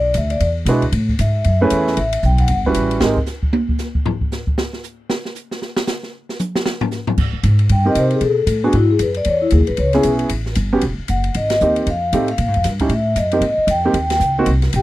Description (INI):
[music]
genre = jazz, small-group swing and bop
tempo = 230 BPM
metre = 4/4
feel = swing 60% on 8ths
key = unclear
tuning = A4 = 440 Hz
[part]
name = vibraphone with medium mallets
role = melody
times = 0.0-2.5, 7.7-14.8 s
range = E4 to G5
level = -18 LUFS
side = left 2 dB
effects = none
[part]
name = upright bass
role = bass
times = 0.0-3.2, 7.2-14.8 s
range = E1 to C3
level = -18 LUFS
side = equal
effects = none
[part]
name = open jazz drum kit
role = drums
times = 0.1-14.8 s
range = crash cymbal, hi-hat, kick drum, ride cymbal, snare drum, toms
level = -23 LUFS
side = equal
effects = none
[part]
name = warm grand piano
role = accompaniment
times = 0.7-3.2, 7.9-14.5 s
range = G3 to B4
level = -17 LUFS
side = right 2 dB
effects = none
[sound]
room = little or no reverb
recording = dry, close 1970s-style studio recording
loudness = -15 LUFS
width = side -16 dB against mid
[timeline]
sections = 0.0-7.2 A section; 7.2-14.8 B section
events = vibraphone solo 0.0-7.2; drum solo 3.0-7.2; band accent 11.5, 14.1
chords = 0.4 E7; 0.9 Amaj7; 2.0 A13; 3.0 Abmaj7; 3.5 N.C.; 7.2 Abmaj7; 8.2 Bm7; 8.7 Eadd9; 9.3 Amaj7 (rootless); 10.3 A7(no3); 11.3 Abmaj7; 11.9 F7; 12.4 Bbm7; 12.9 A5; 13.4 Abmaj7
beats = 0.15 0.41 0.67 | 0.93 1.19 1.45 1.71 | 1.97 2.23 2.49 2.75 | 3.02 3.27 3.54 3.79 | 4.05 4.31 4.57 4.83 | 5.09 5.35 5.61 5.87 | 6.13 6.39 6.65 6.91 | 7.17 7.43 7.69 7.96 | 8.21 8.48 8.74 9.00 | 9.26 9.52 9.78 10.04 | 10.30 10.56 10.82 11.08 | 11.34 11.60 11.87 12.13 | 12.39 12.65 12.91 13.17 | 13.43 13.69 13.95 14.21 | 14.48 14.74